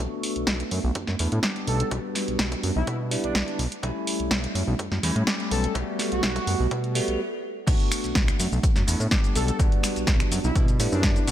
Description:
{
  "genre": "filtered disco house",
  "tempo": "125 BPM",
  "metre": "4/4",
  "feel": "straight",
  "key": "B minor",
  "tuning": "A4 = 440 Hz",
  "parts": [
    { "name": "bell-like tine electric piano", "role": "accompaniment", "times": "0.0-11.3 s", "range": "G3 to G4", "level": "-29 LUFS", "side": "equal", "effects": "phaser, sidechain pumping, low-pass filter" },
    { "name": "fat analog bass", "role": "bass", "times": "0.0-11.3 s", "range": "B1 to B2", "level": "-27 LUFS", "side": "equal", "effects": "sidechain pumping, low-pass filter" },
    { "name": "punchy analog drum machine", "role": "drums", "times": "0.2-11.3 s", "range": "crash cymbal, finger snaps, hi-hat, shaker, snare drum", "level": "-28 LUFS", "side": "equal", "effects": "sidechain pumping on hats, sidechain pumping on cymbals, sidechain pumping on perc" },
    { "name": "electronic kick drum", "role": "drums", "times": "0.5-11.1 s", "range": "none", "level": "-24 LUFS", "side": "equal", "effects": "high-pass filter on kick, high-pass filter on room" },
    { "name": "analog synth brass", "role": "melody", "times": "1.7-11.3 s", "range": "D4 to A4", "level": "-32 LUFS", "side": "right 1 dB", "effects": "chorus, sidechain pumping, low-pass filter" }
  ],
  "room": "light reverb",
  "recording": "none",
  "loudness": "-22 LUFS",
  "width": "side -11 dB against mid",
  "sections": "0.0-7.7 A section; 7.7-11.3 B section",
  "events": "build-up 0.0-7.7; filter sweep 0.0-7.7; break 7.2-7.7; drop 7.7-11.3",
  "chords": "0.0 Bm7; 1.7 Em7/B; 3.6 A7/B; 5.8 Gmaj9/B; 7.7 Bm7",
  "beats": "0.47 0.95 1.44 | 1.92 2.40 2.88 3.35 | 3.83 4.32 4.79 5.28 | 5.75 6.24 6.71 7.20 | 7.67 8.15 8.63 9.12 | 9.60 10.07 10.55 11.04"
}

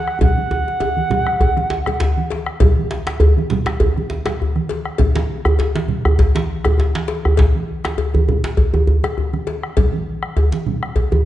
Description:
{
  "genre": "west african traditional, West African drum ensemble",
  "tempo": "100 BPM",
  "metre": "4/4",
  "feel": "swing 54% on 16ths",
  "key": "unclear",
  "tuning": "A4 = 440 Hz",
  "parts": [
    { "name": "reedy bansuri", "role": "melody", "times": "0.0-2.3 s", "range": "F#5", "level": "-21 LUFS", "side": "right 2 dB", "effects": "none" },
    { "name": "bombo", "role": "percussion", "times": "0.1-11.2 s", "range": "none", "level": "-21 LUFS", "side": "equal", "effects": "none" },
    { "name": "congas", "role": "percussion", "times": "0.2-11.2 s", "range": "none", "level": "-24 LUFS", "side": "right 4 dB", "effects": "none" },
    { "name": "cowbell", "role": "percussion", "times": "0.2-11.1 s", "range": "none", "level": "-27 LUFS", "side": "left 5 dB", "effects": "none" },
    { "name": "djembe", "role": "percussion", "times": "0.2-11.2 s", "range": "none", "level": "-23 LUFS", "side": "left 3 dB", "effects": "none" },
    { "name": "djembe", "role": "percussion", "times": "0.2-11.2 s", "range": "none", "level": "-18 LUFS", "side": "right 1 dB", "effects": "none" }
  ],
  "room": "wet recital hall reverb, RT60 1.4 s",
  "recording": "nothing above 10.3 kHz",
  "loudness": "-15 LUFS",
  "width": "side -13 dB against mid",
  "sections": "0.0-2.6 A section; 2.6-11.3 B section",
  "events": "drum fill 0.2-2.6",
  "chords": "none",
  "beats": "| 0.21 0.81 1.41 2.00 | 2.60 3.20 3.80 4.39 | 4.99 5.59 6.18 6.78 | 7.38 7.97 8.57 9.17 | 9.76 10.36 10.95"
}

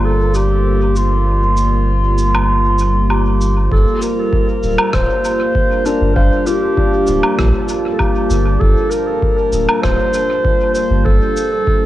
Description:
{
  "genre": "ambient dub",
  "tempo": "98 BPM",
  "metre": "4/4",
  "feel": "straight",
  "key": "G minor",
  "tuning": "A4 = 436 Hz",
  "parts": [
    { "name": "dark clarinet", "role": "melody", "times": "0.0-11.9 s", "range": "F4 to C5", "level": "-17 LUFS", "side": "equal", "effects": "cassette tape, dub echo" },
    { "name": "deep dark ambient pad", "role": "sustained chords", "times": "0.0-11.9 s", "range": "G3 to A5", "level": "-20 LUFS", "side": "right 1 dB", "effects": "chorus, built-in reverb" },
    { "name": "felt-muted upright piano", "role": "arpeggios", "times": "0.0-11.9 s", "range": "D4 to F5", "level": "-25 LUFS", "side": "left 4 dB", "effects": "analog delay" },
    { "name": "warm sub bass", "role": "bass", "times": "0.0-11.2 s", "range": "D1 to Bb1", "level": "-15 LUFS", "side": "equal", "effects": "none" },
    { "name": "cabasa, woodblock and rim click", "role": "drums", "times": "0.3-11.5 s", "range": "none", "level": "-22 LUFS", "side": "equal", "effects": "cassette tape, dub echo" },
    { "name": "electronic kick drum", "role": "drums", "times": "3.7-11.8 s", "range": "none", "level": "-18 LUFS", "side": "equal", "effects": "cassette tape" }
  ],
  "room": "light reverb",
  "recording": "home recording on cassette",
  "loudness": "-12 LUFS",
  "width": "side -14 dB against mid",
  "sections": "0.0-3.7 A section; 3.7-11.9 B section",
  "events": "none",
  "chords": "0.0 Bbadd9/G; 3.7 Gm11",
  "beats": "0.04 0.65 | 1.27 1.88 2.49 3.10 | 3.71 4.33 4.94 5.55 | 6.16 6.78 7.39 8.00 | 8.61 9.22 9.84 10.45 | 11.06 11.67"
}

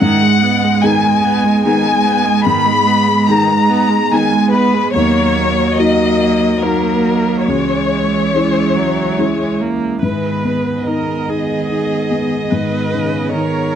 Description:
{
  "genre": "neoclassical piano and strings",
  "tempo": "72 BPM",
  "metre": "3/4",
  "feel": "rubato",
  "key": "G# minor",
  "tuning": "A4 = 440 Hz",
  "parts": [
    { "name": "clear chamber violin section", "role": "melody", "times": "0.0-13.8 s", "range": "A#4 to B5", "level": "-17 LUFS", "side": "left 4 dB", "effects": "none" },
    { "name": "rich cello", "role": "second line", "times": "0.0-13.8 s", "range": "C#3 to G#3", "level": "-20 LUFS", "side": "right 7 dB", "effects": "none" },
    { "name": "clear viola", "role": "accompaniment", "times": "0.0-13.8 s", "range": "D#3 to B4", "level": "-20 LUFS", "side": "right 5 dB", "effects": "none" },
    { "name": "felt-muted upright piano", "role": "accompaniment", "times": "0.0-13.8 s", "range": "C#2 to G#4", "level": "-18 LUFS", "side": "left 2 dB", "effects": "none" },
    { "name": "warbly tape-like pad", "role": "sustained chords", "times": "0.0-13.8 s", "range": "G#3 to E5", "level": "-23 LUFS", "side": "right 2 dB", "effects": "chorus, built-in reverb" }
  ],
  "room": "moderate studio reverb, RT60 0.5 s",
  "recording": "dry, close 1970s-style studio recording",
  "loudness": "-12 LUFS",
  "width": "side -9 dB against mid",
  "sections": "0.0-10.0 A section; 10.0-13.8 B section",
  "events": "none",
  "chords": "0.0 G#m; 4.9 D#m; 7.5 C#m; 10.0 G#m",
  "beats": "| 0.01 0.83 1.65 | 2.47 3.29 4.11 | 4.93 5.77 6.61 | 7.47 8.33 9.18 | 10.02 10.86 11.69 | 12.52 13.34"
}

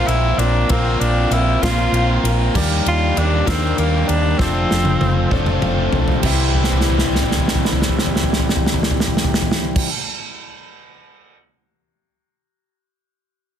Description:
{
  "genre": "folk rock and heartland rock",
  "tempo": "65 BPM (dotted quarters)",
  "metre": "6/8",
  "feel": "straight",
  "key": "C mixolydian",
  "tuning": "A4 = 441 Hz",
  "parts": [
    { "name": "clear tenor saxophone", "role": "melody", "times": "0.0-5.6 s", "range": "Bb3 to F4", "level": "-22 LUFS", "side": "equal", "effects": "none" },
    { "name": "picked steel-string acoustic guitar", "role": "accompaniment", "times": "0.0-9.9 s", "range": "D3 to E5", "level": "-26 LUFS", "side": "left 8 dB", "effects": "none" },
    { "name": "warm grand piano", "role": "accompaniment", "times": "0.0-9.9 s", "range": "C4 to G5", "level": "-33 LUFS", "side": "right 4 dB", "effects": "none" },
    { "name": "crunchy overdriven guitar", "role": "riff", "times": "0.0-9.9 s", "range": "C3 to Bb4", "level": "-21 LUFS", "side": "right 1 dB", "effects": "none" },
    { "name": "hollow-body short-scale fingered electric bass", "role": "bass", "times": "0.0-9.8 s", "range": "F1 to Eb2", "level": "-20 LUFS", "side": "equal", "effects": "none" },
    { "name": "natural country drum kit", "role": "drums", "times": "0.1-11.4 s", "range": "crash cymbal, kick drum, ride cymbal, snare drum, toms", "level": "-20 LUFS", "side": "equal", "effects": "none" }
  ],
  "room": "light reverb, small room ambience",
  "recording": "dense, heavily limited modern master",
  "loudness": "-15 LUFS",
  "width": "side -9 dB against mid",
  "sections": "0.0-6.2 A section; 6.2-9.9 B section",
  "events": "drum fill 4.4-6.2, 6.5-9.8; grand piano fill 5.3-6.2",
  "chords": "0.0 Bbsus2; 2.5 Ebmaj7; 4.4 F6; 6.2 C",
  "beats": "| 0.70 1.63 | 2.55 3.47 | 4.39 5.31 | 6.23 7.15 | 8.07 8.99"
}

